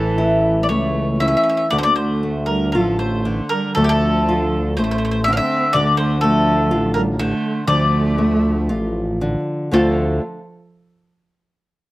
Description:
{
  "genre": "fado-style ballad",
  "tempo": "57-63 BPM",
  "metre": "2/4",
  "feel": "rubato",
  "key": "D minor",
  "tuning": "A4 = 440 Hz",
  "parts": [
    { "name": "bowl-back mandolin", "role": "melody", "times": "0.0-10.2 s", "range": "G4 to F5", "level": "-21 LUFS", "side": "left 1 dB", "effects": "slapback echo" },
    { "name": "dark cello", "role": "second line", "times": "0.0-10.2 s", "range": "E3 to D4", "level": "-24 LUFS", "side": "right 3 dB", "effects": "none" },
    { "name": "nylon-string guitar", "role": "accompaniment", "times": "0.0-10.2 s", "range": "D3 to F4", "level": "-20 LUFS", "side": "left 1 dB", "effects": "none" },
    { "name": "fat analog bass", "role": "bass", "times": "0.0-10.2 s", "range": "A1 to D2", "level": "-21 LUFS", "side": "equal", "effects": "none" }
  ],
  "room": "little or no reverb",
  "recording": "recorded outdoors, with no room sound",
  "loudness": "-16 LUFS",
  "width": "side -17 dB against mid",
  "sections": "0.0-9.7 A section; 9.7-11.7 B section",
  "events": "none",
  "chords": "0.0 A; 1.7 Dm; 9.7 Dm7"
}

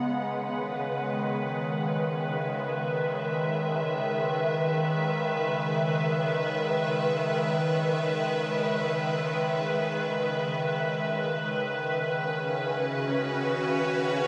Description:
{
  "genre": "ambient",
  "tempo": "free time",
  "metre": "none",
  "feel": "none",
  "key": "C# minor",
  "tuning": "A4 = 440 Hz",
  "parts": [
    { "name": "evolving wavetable pad", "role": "sustained chords", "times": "0.0-14.3 s", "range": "C#3 to F#5", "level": "-28 LUFS", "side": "equal", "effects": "ensemble chorus, built-in reverb, shimmer reverb" }
  ],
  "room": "wet huge ambient reverb, RT60 8.3 s",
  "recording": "cassette tape, small room ambience",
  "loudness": "-28 LUFS",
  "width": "mono",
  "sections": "0.0-14.3 A section",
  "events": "none",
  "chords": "0.0 C#m7"
}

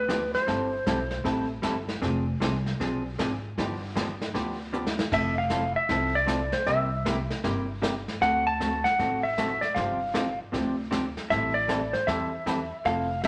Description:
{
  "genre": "country, western swing",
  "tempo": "155 BPM",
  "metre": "4/4",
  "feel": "swing 64% on 8ths",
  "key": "C major",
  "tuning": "A4 = 441 Hz",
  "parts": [
    { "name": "clean lap steel guitar", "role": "melody", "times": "0.0-1.5, 5.1-13.3 s", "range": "B4 to A5", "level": "-29 LUFS", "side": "equal", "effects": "none" },
    { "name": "upright bass", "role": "bass", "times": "0.0-13.3 s", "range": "F1 to E2", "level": "-36 LUFS", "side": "equal", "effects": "none" },
    { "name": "hollow-body jazz guitar", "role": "accompaniment", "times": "0.1-13.3 s", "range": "C3 to A4", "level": "-33 LUFS", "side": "equal", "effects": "none" },
    { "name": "vintage brush drum kit", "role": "drums", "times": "0.1-13.3 s", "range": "brushed snare drum, crash cymbal, hi-hat, kick drum, snare drum", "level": "-36 LUFS", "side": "equal", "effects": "none" }
  ],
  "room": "wet studio reverb, RT60 0.9 s",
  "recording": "none",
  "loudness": "-27 LUFS",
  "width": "mono",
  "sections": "0.0-13.3 A section",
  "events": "drum fill 4.7-5.1",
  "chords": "0.5 C6/G; 2.0 Fm6; 3.6 G7; 5.1 Fmaj7; 6.7 C7; 8.2 D7; 9.8 G7sus4; 11.3 Am7"
}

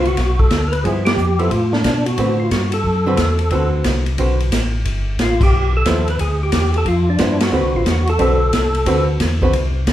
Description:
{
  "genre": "soul jazz organ trio",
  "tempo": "180 BPM",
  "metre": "4/4",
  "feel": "swing 65% on 8ths",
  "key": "D mixolydian",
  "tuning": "A4 = 439 Hz",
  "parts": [
    { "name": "percussive tonewheel organ", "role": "melody", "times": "0.0-9.1 s", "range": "D4 to B4", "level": "-20 LUFS", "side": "equal", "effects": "slow rotary speaker, overdrive, chorus vibrato" },
    { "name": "archtop guitar, miked and amplified", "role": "accompaniment", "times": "0.0-9.5 s", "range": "D3 to B4", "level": "-21 LUFS", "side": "right 1 dB", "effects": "none" },
    { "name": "mellow tonewheel organ", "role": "bass", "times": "0.0-9.9 s", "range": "G1 to B2", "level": "-18 LUFS", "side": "equal", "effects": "overdrive, chorus vibrato, slow rotary speaker" },
    { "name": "swinging big-band drum kit", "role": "drums", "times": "0.1-9.9 s", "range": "crash cymbal, hi-hat, kick drum, ride cymbal, snare drum", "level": "-20 LUFS", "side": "equal", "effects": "none" }
  ],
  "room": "wet large studio reverb, RT60 1.1 s",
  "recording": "heard from further back in the room",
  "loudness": "-14 LUFS",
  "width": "side -12 dB against mid",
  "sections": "0.0-9.9 A section",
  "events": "band accent 1.0, 5.4, 7.4",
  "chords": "0.0 D6; 0.8 G13; 2.2 D13; 4.9 G13; 7.5 D13"
}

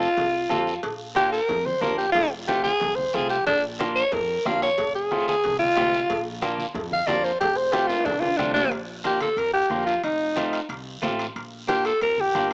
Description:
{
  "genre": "latin, cumbia",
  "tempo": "183 BPM",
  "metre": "4/4",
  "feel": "straight",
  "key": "Bb major",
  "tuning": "A4 = 439 Hz",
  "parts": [
    { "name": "raspy alto saxophone", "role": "melody", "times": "0.0-12.5 s", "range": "D4 to F5", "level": "-22 LUFS", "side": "equal", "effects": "cassette tape" },
    { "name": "semi-hollow electric guitar", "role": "accompaniment", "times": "0.0-12.5 s", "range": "A3 to A4", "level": "-29 LUFS", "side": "right 1 dB", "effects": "cassette tape" },
    { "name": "upright bass", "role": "bass", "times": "0.0-12.5 s", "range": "F1 to F2", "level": "-39 LUFS", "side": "equal", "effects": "none" },
    { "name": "guiro", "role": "percussion", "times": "0.0-12.5 s", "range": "none", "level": "-39 LUFS", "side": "right 1 dB", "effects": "none" },
    { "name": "congas", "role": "percussion", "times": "0.2-12.5 s", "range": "none", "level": "-35 LUFS", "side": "equal", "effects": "none" },
    { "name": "cowbell and timbales", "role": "percussion", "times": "0.2-12.5 s", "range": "none", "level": "-32 LUFS", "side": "equal", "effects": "none" },
    { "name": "bombo", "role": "percussion", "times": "3.5-8.6 s", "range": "none", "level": "-36 LUFS", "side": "left 1 dB", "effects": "none" }
  ],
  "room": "moderate spring reverb, RT60 2.7 s",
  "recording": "home recording on cassette, small speaker sound",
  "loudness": "-21 LUFS",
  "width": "side -32 dB against mid",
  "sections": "0.0-8.7 A section; 8.7-12.5 B section",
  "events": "alto saxophone solo 0.0-8.7; drum fill 7.9-8.7",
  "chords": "0.0 F; 0.8 Bb; 2.2 F; 3.5 Bb; 4.8 F; 6.1 Bb; 7.4 F; 8.7 Bb; 10.0 F7; 11.4 Bb"
}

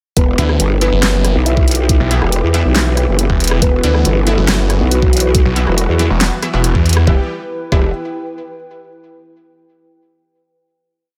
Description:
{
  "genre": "heavy wobble dubstep",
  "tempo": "139 BPM",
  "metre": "4/4",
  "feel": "half-time",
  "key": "E minor",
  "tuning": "A4 = 443 Hz",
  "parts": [
    { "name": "felt-muted upright piano", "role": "melody", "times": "0.2-7.9 s", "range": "F#3 to E5", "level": "-24 LUFS", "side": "equal", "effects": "delay" },
    { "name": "supersaw chords", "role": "sustained chords", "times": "0.2-7.3 s", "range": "E3 to G4", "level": "-28 LUFS", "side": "equal", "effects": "vintage 12-bit sampler grit, sidechain pumping, low-pass filter" },
    { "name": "growl bass", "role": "bass", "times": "0.2-7.9 s", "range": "E1 to E2", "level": "-17 LUFS", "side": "equal", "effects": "chorus, overdrive" },
    { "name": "dubstep drum kit", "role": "drums", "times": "0.2-7.1 s", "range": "handclaps, hi-hat, rim click, snare drum", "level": "-20 LUFS", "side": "equal", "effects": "overdrive" },
    { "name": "electronic kick drum", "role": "drums", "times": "0.2-7.8 s", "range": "none", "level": "-16 LUFS", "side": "equal", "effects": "overdrive" },
    { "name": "warbly tape-like pad", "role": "texture", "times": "1.9-8.8 s", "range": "E4 to G5", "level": "-29 LUFS", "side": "equal", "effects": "chorus, built-in reverb, sidechain pumping" },
    { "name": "orchestra-hit-like synth stab", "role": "stabs", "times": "0.4-7.9 s", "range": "E3 to E4", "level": "-26 LUFS", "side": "equal", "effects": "built-in reverb, delay" },
    { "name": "snarling distorted saw bass", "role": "bass", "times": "0.4-7.1 s", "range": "E1 to E2", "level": "-16 LUFS", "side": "equal", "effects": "distortion, overdrive" }
  ],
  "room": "digital ambience",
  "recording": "none",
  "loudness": "-14 LUFS",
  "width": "mono",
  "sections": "0.2-7.1 drop; 7.1-8.8 final chord",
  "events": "drop 0.2-7.1",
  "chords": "0.2 Em"
}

